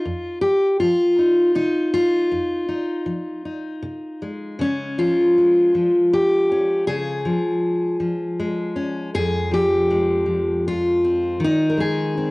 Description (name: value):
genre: folk, solo fingerstyle acoustic guitar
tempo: 79 BPM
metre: 3/4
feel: straight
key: unclear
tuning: A4 = 440 Hz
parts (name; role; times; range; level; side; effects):
- fingerpicked steel-string acoustic guitar; solo; 0.0-12.3 s; F2 to Bb4; -18 LUFS; left 1 dB; none
room: wet studio reverb, RT60 0.6 s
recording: home recording on cassette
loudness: -17 LUFS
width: side -23 dB against mid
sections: 0.0-4.6 A section; 4.6-12.3 B section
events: none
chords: 0.0 F7(no3); 4.6 Db; 9.1 Fmadd9; 11.4 Ab/Eb